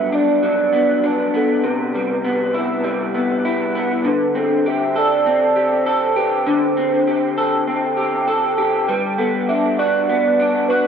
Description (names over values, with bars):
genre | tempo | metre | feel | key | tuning
indie pop | 99 BPM | 4/4 | straight | G major | A4 = 440 Hz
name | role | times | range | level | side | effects
hollow clarinet-like synth lead | melody | 0.0-10.9 s | A4 to E5 | -20 LUFS | right 4 dB | lush chorus, analog delay
electric guitar through a small old amp | accompaniment | 0.0-10.9 s | G2 to A4 | -17 LUFS | left 2 dB | analog chorus, vibrato effect, analog delay
room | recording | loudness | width
moderate echo chamber reverb, RT60 1.6 s, digital ambience | echo-heavy mix, cassette tape | -16 LUFS | side -7 dB against mid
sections
0.0-10.9 A section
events
none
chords
0.0 Gmaj7; 1.6 Cmaj7; 4.0 D7sus4; 8.9 Gmaj7